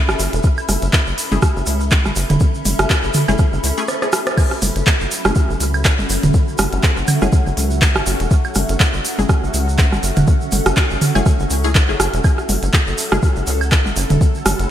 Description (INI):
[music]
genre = minimal techno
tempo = 122 BPM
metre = 4/4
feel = swing 56% on 16ths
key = F# minor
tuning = A4 = 440 Hz
[part]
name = rubbery square bass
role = bass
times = 0.0-14.7 s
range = E1 to C#2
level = -20 LUFS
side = equal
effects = sidechain pumping
[part]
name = granular cloud pad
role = texture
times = 0.0-14.7 s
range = C#4 to B5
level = -26 LUFS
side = left 2 dB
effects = built-in reverb, analog chorus, sidechain pumping
[part]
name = booming analog drum machine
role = percussion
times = 0.1-14.6 s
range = rim click, toms, woodblock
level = -20 LUFS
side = right 2 dB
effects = gated reverb, digital delay
[part]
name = tube shaker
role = percussion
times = 0.1-14.7 s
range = none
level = -28 LUFS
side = right 4 dB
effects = none
[part]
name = minimal click drum kit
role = drums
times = 0.2-14.7 s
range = crash cymbal, handclaps, hi-hat, rim click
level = -21 LUFS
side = equal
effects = gated reverb
[part]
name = electronic kick drum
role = drums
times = 0.4-14.3 s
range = none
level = -15 LUFS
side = equal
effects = none
[part]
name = filtered dub chord stab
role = stabs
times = 1.3-13.2 s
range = A3 to G#4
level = -27 LUFS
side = left 4 dB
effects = phaser, digital delay
[part]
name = bubbling stepped-filter texture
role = texture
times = 4.8-14.7 s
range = F#3 to A4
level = -30 LUFS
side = equal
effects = chorus, built-in reverb, sidechain pumping
[sound]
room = light reverb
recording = bright 1980s-style digital production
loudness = -14 LUFS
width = side -11 dB against mid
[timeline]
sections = 0.0-14.7 A section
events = drum fill 3.9-4.4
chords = 0.0 F#m7